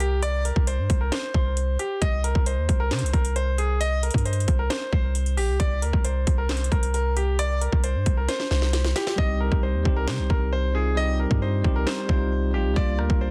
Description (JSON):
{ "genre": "hip hop, trap", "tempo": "134 BPM", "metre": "4/4", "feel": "half-time", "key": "C minor", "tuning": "A4 = 442 Hz", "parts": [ { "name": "clear concert grand piano", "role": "melody", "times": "0.0-13.3 s", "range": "G4 to Eb5", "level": "-31 LUFS", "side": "equal", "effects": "digital delay" }, { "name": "long sustained 808-style bass", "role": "bass", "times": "0.0-13.3 s", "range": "Bb1 to C3", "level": "-26 LUFS", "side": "equal", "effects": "none" }, { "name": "trap drum kit", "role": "drums", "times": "0.0-13.2 s", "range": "handclaps, hi-hat, kick drum, rim click, snare drum", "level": "-27 LUFS", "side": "equal", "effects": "overdrive, vintage 12-bit sampler grit" }, { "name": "bell-like tine electric piano", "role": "accompaniment", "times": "9.2-13.3 s", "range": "G3 to G4", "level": "-31 LUFS", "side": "equal", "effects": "none" } ], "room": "digital ambience", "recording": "dense, heavily limited modern master", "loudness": "-24 LUFS", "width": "mono", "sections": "0.0-13.3 A section", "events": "drum fill 8.3-9.2; hi-hats muted 9.2-13.3", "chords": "0.0 N.C.; 9.2 Cm; 12.8 Gm7/C", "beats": "| 0.23 0.67 1.12 1.57 | 2.02 2.46 2.91 3.36 | 3.81 4.25 4.70 5.15 | 5.60 6.05 6.49 6.94 | 7.39 7.84 8.29 8.73 | 9.18 9.63 10.08 10.52 | 10.97 11.42 11.87 12.31 | 12.76 13.21" }